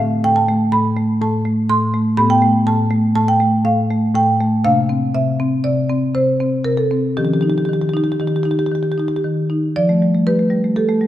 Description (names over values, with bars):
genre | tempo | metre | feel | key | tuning
classical, contemporary piece for solo marimba | 119 BPM | 5/4 | uneven beats | F lydian | A4 = 440 Hz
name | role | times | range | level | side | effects
marimba with soft mallets | solo | 0.0-11.1 s | A2 to C6 | -14 LUFS | equal | none
room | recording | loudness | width
wet recital hall reverb, RT60 1.6 s | none | -14 LUFS | side -13 dB against mid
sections
0.0-9.8 A section; 9.8-11.1 B section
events
none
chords
0.0 Am7; 2.2 G9/A; 4.7 C9sus4; 7.2 Eb9; 9.8 F69